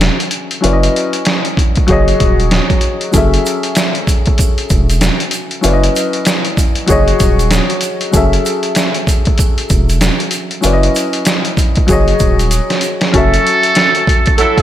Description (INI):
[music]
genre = hip hop, boom-bap hip-hop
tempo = 96 BPM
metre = 4/4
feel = swing 60% on 16ths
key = F# dorian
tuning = A4 = 440 Hz
[part]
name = warm upright piano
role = accompaniment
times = 0.0-14.6 s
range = F#3 to E5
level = -16 LUFS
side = left 2 dB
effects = cassette tape, high-pass filter, low-pass filter
[part]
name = saturated sub bass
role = bass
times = 0.0-13.4 s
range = D#1 to F#1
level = -14 LUFS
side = equal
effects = none
[part]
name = trip hop sampler-style drum kit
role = drums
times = 0.0-14.6 s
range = hi-hat, kick drum, snare drum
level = -14 LUFS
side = equal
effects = none
[part]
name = tube shaker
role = percussion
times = 3.1-13.0 s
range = none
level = -27 LUFS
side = right 7 dB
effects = none
[part]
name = trumpet with metal mute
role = melody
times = 13.1-14.5 s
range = A4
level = -13 LUFS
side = right 2 dB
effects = high-pass filter, low-pass filter, analog delay
[part]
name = clear horn section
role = stabs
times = 14.4-14.6 s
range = F#3 to A4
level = -10 LUFS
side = right 4 dB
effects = high-pass filter, low-pass filter
[sound]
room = moderate lush hall reverb, RT60 1.6 s, small room ambience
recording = dreamy mix soaked in reverb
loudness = -10 LUFS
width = side -12 dB against mid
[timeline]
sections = 0.0-13.1 A section; 13.1-14.6 B section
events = drum fill 12.5-13.1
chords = 0.0 F#m7; 0.6 C#m7/F#; 1.9 G#7sus4/D#; 3.1 F#m7; 5.6 C#m7/F#; 6.9 G#7sus4/D#; 8.1 F#m7; 10.6 C#m7/F#; 11.9 G#7sus4/D#; 13.1 F#m7